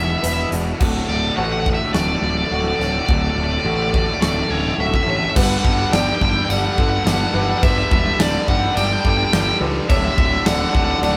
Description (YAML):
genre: post-rock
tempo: 106 BPM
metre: 4/4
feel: straight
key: unclear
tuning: A4 = 442 Hz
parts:
  - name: crunchy overdriven guitar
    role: melody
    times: 0.0-11.2 s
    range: C#5 to G5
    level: -24 LUFS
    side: equal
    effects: none
  - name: hand-pumped harmonium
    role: sustained chords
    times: 0.0-11.2 s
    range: D3 to B4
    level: -34 LUFS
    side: equal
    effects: none
  - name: felt-muted upright piano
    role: arpeggios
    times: 0.0-11.2 s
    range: A4 to C#6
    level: -32 LUFS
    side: equal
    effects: none
  - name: semi-hollow electric guitar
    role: arpeggios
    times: 0.0-5.4 s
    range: D2 to F#4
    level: -31 LUFS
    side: equal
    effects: vibrato effect
  - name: tight distorted guitar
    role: riff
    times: 0.0-11.2 s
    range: D2 to G3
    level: -28 LUFS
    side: equal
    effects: distortion
  - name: overdriven picked electric bass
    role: bass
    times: 0.0-11.2 s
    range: D1 to C#2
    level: -25 LUFS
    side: equal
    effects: none
  - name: huge arena drum kit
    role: drums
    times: 0.2-11.2 s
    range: crash cymbal, hi-hat, kick drum, snare drum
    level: -23 LUFS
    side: equal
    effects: none
  - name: tight distorted guitar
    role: riff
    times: 5.4-11.2 s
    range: D2 to G3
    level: -30 LUFS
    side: equal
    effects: distortion
room: moderate studio reverb, RT60 0.5 s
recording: band playing live in one room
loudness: -18 LUFS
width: mono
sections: 0.0-5.4 A section; 5.4-11.2 B section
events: build-up 0.0-5.4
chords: 0.0 E7; 0.8 Dmaj7; 5.4 Gmaj7; 9.9 Dmaj7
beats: 0.24 | 0.81 1.38 1.95 2.52 | 3.08 3.65 4.22 4.79 | 5.36 5.92 6.49 7.06 | 7.62 8.19 8.76 9.32 | 9.89 10.46 11.02